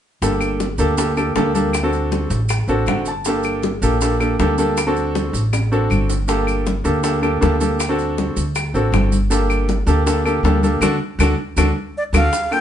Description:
Afro-Cuban jazz; 159 BPM; 4/4; straight; G harmonic minor; A4 = 439 Hz
clear baby grand piano; accompaniment; 0.2-12.6 s; Bb3 to A5; -19 LUFS; equal
upright bass; bass; 0.2-12.3 s; G1 to D2; -20 LUFS; equal
bongos; percussion; 0.2-12.6 s; -28 LUFS; left 2 dB
congas; percussion; 0.2-12.6 s; -26 LUFS; left 2 dB
maracas; percussion; 0.2-12.6 s; -31 LUFS; right 5 dB
claves; percussion; 0.4-12.6 s; -27 LUFS; left 4 dB
breathy bright concert flute; melody; 12.0-12.6 s; D5 to G5; -19 LUFS; right 1 dB
moderate studio reverb, RT60 0.8 s; band playing live in one room, nothing above 10.7 kHz; -16 LUFS; side -10 dB against mid
0.2-12.3 A section
grand piano fill 2.7-3.3, 11.6-12.3; drum fill 5.5-6.3, 11.2-12.3; band accent 10.8-12.3
0.2 Gmadd9; 1.7 D7; 3.3 Gmadd9; 4.8 D7; 6.3 Gmadd9; 7.8 D7; 9.3 Gmadd9; 10.8 D

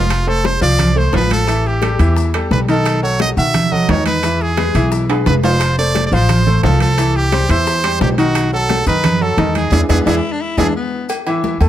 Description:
latin, salsa; 175 BPM; 4/4; straight; A4 = 442 Hz
brilliant trumpet; melody; 0.0-10.7 s; F4 to E5; -19 LUFS; right 2 dB
bright concert grand piano; accompaniment; 0.0-11.7 s; D#3 to A5; -19 LUFS; left 1 dB
upright bass; bass; 0.0-11.7 s; F1 to B2; -16 LUFS; equal
bongos and cowbell; percussion; 0.1-11.6 s; -27 LUFS; left 6 dB
congas; percussion; 0.1-11.6 s; -22 LUFS; equal
maracas; percussion; 0.1-11.7 s; -36 LUFS; left 4 dB
timbales and agogo bells; percussion; 0.1-11.7 s; -24 LUFS; right 4 dB
breathy baritone saxophone; second line; 9.9-11.1 s; B3 to E4; -23 LUFS; left 4 dB
little or no reverb; close, detailed microphones; -12 LUFS; side -12 dB against mid
0.1-11.1 A section
drum fill 5.1-5.6, 9.7-11.1; band accent 9.7-11.1
0.1 F; 1.5 A5; 2.9 B7; 4.2 E; 5.6 F; 7.0 C; 8.4 B7; 9.7 E7; 11.1 A5

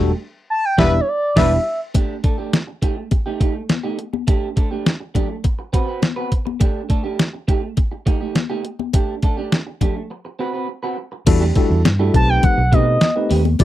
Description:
early-eighties boogie funk; 103 BPM; 4/4; straight; E minor; A4 = 439 Hz
tine electric piano; accompaniment; 0.0-1.6, 11.3-13.6 s; G3 to D5; -21 LUFS; left 2 dB; medium stereo tremolo
electric guitar at the edge of break-up; riff; 0.0-13.6 s; A3 to B4; -25 LUFS; right 4 dB; wide subtle chorus
vintage muted fingered electric bass; bass; 0.0-1.6, 11.3-13.6 s; E1 to B2; -17 LUFS; equal
expressive synth lead; melody; 0.5-1.8, 12.2-13.3 s; C#5 to A5; -18 LUFS; equal; chorus, slapback echo
mellow horn section; second line; 0.8-1.5 s; G3 to B4; -23 LUFS; left 5 dB
detuned 8-bit digital drum machine; drums; 0.8-13.6 s; crash cymbal, hi-hat, kick drum, snare drum; -17 LUFS; equal
congas; percussion; 1.9-13.6 s; -25 LUFS; left 11 dB
little or no reverb; dry, close 1970s-style studio recording; -16 LUFS; side -14 dB against mid
0.0-1.9 A section; 1.9-11.3 B section; 11.3-13.6 A section
band accent 0.0-1.9; break 10.1-11.3
0.0 Em11; 0.8 Em7; 1.9 A7sus4; 2.8 D#; 4.3 A7sus4; 5.4 B5; 6.6 A7sus4; 7.5 D#; 8.9 A7sus4; 10.1 B5; 11.3 Em11; 12.1 B7b9b13

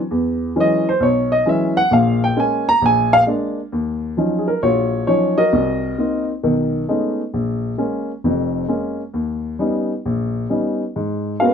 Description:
solo jazz; 133 BPM; 4/4; swing 68% on 8ths; Eb minor from 3.7 s; A4 = 440 Hz
dark baby grand piano; solo; 0.1-11.5 s; F1 to A#5; -16 LUFS; equal
moderate studio ambience, RT60 0.5 s; minimal, uncompressed stereo recording; -16 LUFS; side -7 dB against mid
0.0-3.7 A section; 3.7-11.5 B section
grand piano solo 0.0-3.7
0.1 E69; 1.9 A#m7; 2.8 A#7; 3.7 Ebm9; 5.5 Cm7b5; 6.4 B13; 7.3 Bbm7; 9.1 Eb7b13; 10.9 Abm11

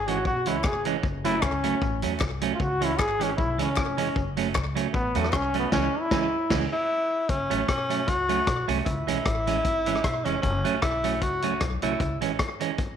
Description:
ska; 153 BPM; 4/4; swing 55% on 8ths; F# minor; A4 = 440 Hz
brilliant trombone; melody; 0.0-6.6 s; A3 to G#4; -28 LUFS; left 1 dB; slapback echo
upright bass; bass; 0.0-13.0 s; E#1 to E2; -32 LUFS; left 1 dB
semi-hollow electric guitar; accompaniment; 0.1-12.7 s; E3 to C#4; -29 LUFS; right 10 dB; slapback echo
vintage drum kit; drums; 0.1-12.9 s; crash cymbal, hi-hat, kick drum, rim click, snare drum; -29 LUFS; left 2 dB; slapback echo
group handclap; percussion; 0.6-5.4 s; -42 LUFS; left 8 dB; slapback echo
breathy tenor saxophone; melody; 6.7-12.2 s; C#4 to F#4; -27 LUFS; left 1 dB
moderate plate reverb, RT60 1.9 s, small room ambience; 1960s-style stereo with parts hard left and right; -23 LUFS; side -8 dB against mid
0.0-7.3 A section; 7.3-13.0 B section
trombone solo 0.0-7.3; band accent 5.7-7.3
0.0 C#m; 1.0 F#m; 2.6 C#m; 4.2 F#m; 5.7 C#m; 7.3 F#m; 8.9 C#m; 10.4 F#m; 12.0 C#m

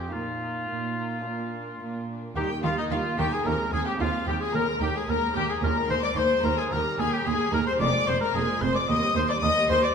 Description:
classical, baroque-style concerto movement with solo episodes; 110 BPM; 4/4; straight; Eb major; A4 = 439 Hz
rich chamber violin section; melody; 0.0-9.9 s; D4 to Eb6; -33 LUFS; left 2 dB
warm oboe; melody; 0.0-9.9 s; Eb4 to Eb5; -30 LUFS; left 2 dB
warm chamber violin section; second line; 0.0-9.9 s; Eb4 to Eb5; -28 LUFS; left 4 dB
dark chamber viola section; accompaniment; 0.0-9.9 s; F3 to C4; -34 LUFS; right 3 dB
lute; accompaniment; 0.0-9.9 s; Eb2 to G4; -38 LUFS; right 2 dB
warm chamber cello section; bass; 0.0-9.8 s; Eb2 to Eb3; -32 LUFS; right 4 dB
rich chamber double bass section; bass; 2.4-9.8 s; F1 to Eb2; -32 LUFS; right 3 dB
wet recital hall reverb, RT60 1.6 s; minimal, uncompressed stereo recording; -23 LUFS; side -6 dB against mid
0.0-2.4 A section; 2.4-9.9 B section
0.1 Bbsus4; 1.2 Bb; 2.4 Eb; 3.5 Fm7/Eb; 4.5 Bb7/Eb; 6.7 Eb; 7.8 Bb5/F; 8.9 Eb

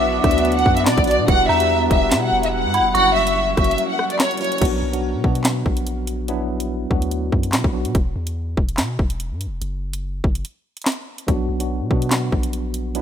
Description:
hip hop, drill; 144 BPM; 4/4; half-time; B harmonic minor; A4 = 442 Hz
warm studio violin section; melody; 0.0-4.6 s; C#5 to F#5; -19 LUFS; equal; digital delay
dark detuned synth bell; second line; 0.0-4.2 s; A#5 to D6; -24 LUFS; right 3 dB; chorus, tremolo, digital delay
tine electric piano; accompaniment; 0.0-8.0, 11.3-13.0 s; F#3 to G4; -25 LUFS; equal; overdrive, fast stereo tremolo
granular cloud pad; sustained chords; 0.0-4.6 s; F#3 to F#5; -26 LUFS; left 1 dB; built-in reverb
long sustained 808-style bass; bass; 0.0-13.0 s; E1 to B2; -25 LUFS; equal
drill drum kit; drums; 0.2-13.0 s; crash cymbal, handclaps, hi-hat, kick drum, rim click, snare drum; -20 LUFS; equal
light reverb, digital ambience; rough home demo mix; -17 LUFS; side -8 dB against mid
0.0-4.6 A section; 4.6-13.0 B section
break 3.8-4.6, 7.9-11.3
0.0 Bm; 1.3 Emadd9; 2.9 F#; 4.6 Bm; 7.9 N.C.; 11.3 Bm

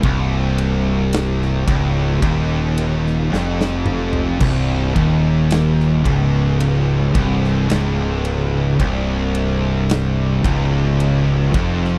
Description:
stoner and doom metal; 55 BPM; 4/4; straight; C phrygian; A4 = 440 Hz
high-gain distorted guitar; riff; 0.0-12.0 s; C2 to F2; -25 LUFS; equal; distortion
thick fuzz guitar; riff; 0.0-12.0 s; C2 to F2; -22 LUFS; equal; distortion
fuzz fingered electric bass; bass; 0.0-12.0 s; C1 to F1; -24 LUFS; equal; overdrive
big rock drum kit; drums; 0.0-12.0 s; crash cymbal, kick drum, ride cymbal, snare drum, toms; -24 LUFS; equal
thick fuzz guitar; riff; 4.4-12.0 s; C2 to F2; -24 LUFS; equal
little or no reverb; dry, close 1970s-style studio recording; -18 LUFS; mono
0.0-12.0 A section
drum fill 3.3-4.4
0.0 Cm

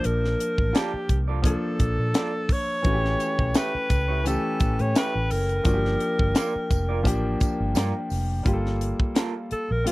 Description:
lush 1970s-style soul; 86 BPM; 4/4; swing 54% on 16ths; G minor; A4 = 440 Hz
clear alto saxophone; melody; 0.0-9.9 s; F4 to C#5; -28 LUFS; equal; tape echo
clear concert grand piano; accompaniment; 0.0-9.9 s; E3 to A5; -29 LUFS; left 1 dB
tight funk drum kit; drums; 0.0-9.9 s; hi-hat, kick drum, snare drum; -24 LUFS; equal
vintage muted fingered electric bass; bass; 0.1-9.8 s; F1 to Bb2; -26 LUFS; equal
electric guitar through a small old amp; riff; 0.7-9.3 s; Bb3 to D5; -32 LUFS; right 6 dB
tambourine; percussion; 3.2-8.3 s; -43 LUFS; right 14 dB
little or no reverb; dry, close 1970s-style studio recording; -22 LUFS; side -20 dB against mid
0.0-8.5 A section; 8.5-9.9 B section
alto saxophone solo 8.5-9.9
0.0 Bbmaj7; 2.8 A7; 5.7 Gm7; 8.5 Gm9

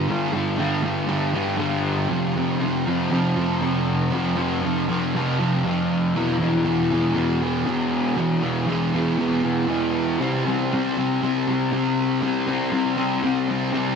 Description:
rock; 119 BPM; 4/4; straight; A4 = 440 Hz
fuzz guitar; solo; 0.0-14.0 s; E2 to C4; -20 LUFS; equal; distortion, lush chorus, tape echo
wet plate reverb, RT60 2.8 s; dreamy mix soaked in reverb; -20 LUFS; side -6 dB against mid
0.0-14.0 A section
0.0 G5; 2.1 F5; 6.2 E5; 10.2 C5

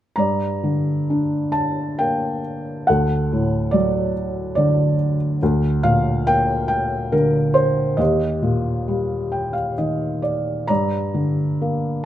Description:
classical, lyrical solo piano; 63-72 BPM; 3/4; rubato; G minor; A4 = 441 Hz
felt-muted upright piano; solo; 0.2-12.1 s; D2 to Bb5; -18 LUFS; equal
light reverb; close, detailed microphones; -18 LUFS; side -12 dB against mid
0.2-12.1 A section
felt piano fill 8.9-10.7
0.2 Gm; 2.9 D; 5.4 Bb69/D; 8.0 Eb; 10.7 Gm

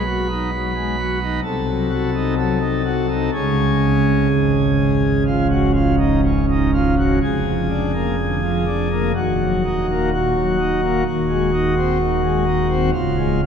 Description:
classical, chorale-style piece for pipe organ; 63 BPM; 4/4; rubato; A4 = 438 Hz
pipe organ, principal chorus; solo; 0.0-13.5 s; C#1 to B4; -16 LUFS; equal
wet cathedral reverb, RT60 5.0 s; minimal, uncompressed stereo recording; -16 LUFS; side -7 dB against mid
0.0-13.5 A section
0.0 G#m7/B; 1.4 Cdim7; 3.3 C#5; 7.2 A#7/E#; 9.2 D#m; 11.1 G#7/D#; 12.9 C#

